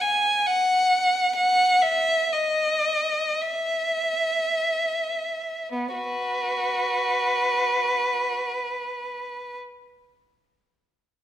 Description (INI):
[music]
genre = classical, free, expressive piece for unaccompanied violin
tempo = 20-45 BPM (dotted quarters)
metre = 6/8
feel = rubato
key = B major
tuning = A4 = 439 Hz
[part]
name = rich violin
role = solo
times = 0.0-9.6 s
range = B3 to G#5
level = -21 LUFS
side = equal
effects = none
[sound]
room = moderate recital hall reverb, RT60 1.4 s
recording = minimal, uncompressed stereo recording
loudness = -21 LUFS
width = side -11 dB against mid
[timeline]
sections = 0.0-5.7 A section; 5.7-9.4 B section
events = slowing down 0.0-5.7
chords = none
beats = 0.47 | 1.82 3.41 | 5.71 7.55